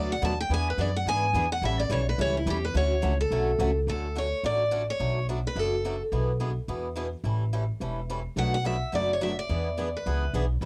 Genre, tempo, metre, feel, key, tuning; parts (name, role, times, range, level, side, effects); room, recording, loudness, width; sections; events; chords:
acoustic string swing (jazz manouche); 214 BPM; 4/4; swing 56% on 8ths; D major; A4 = 440 Hz
picked steel-string acoustic guitar; melody; 0.0-6.0, 8.4-10.3 s; E4 to A5; -31 LUFS; equal
picked steel-string acoustic guitar; accompaniment; 0.0-3.7, 8.4-10.7 s; B2 to B4; -37 LUFS; equal; cassette tape
picked swing-style acoustic guitar; accompaniment; 0.0-10.7 s; B2 to A4; -37 LUFS; equal; cassette tape
upright bass; bass; 0.0-10.7 s; E1 to G#2; -31 LUFS; equal
light reverb; home recording on cassette; -28 LUFS; mono
0.0-3.9 A section; 3.9-10.7 B section
steel-string acoustic guitar solo 0.0-3.9
0.5 E7; 1.6 A7; 2.7 Dmaj7; 5.0 Bm7; 6.1 E7/B; 7.2 A7; 8.4 Bm7; 9.5 E7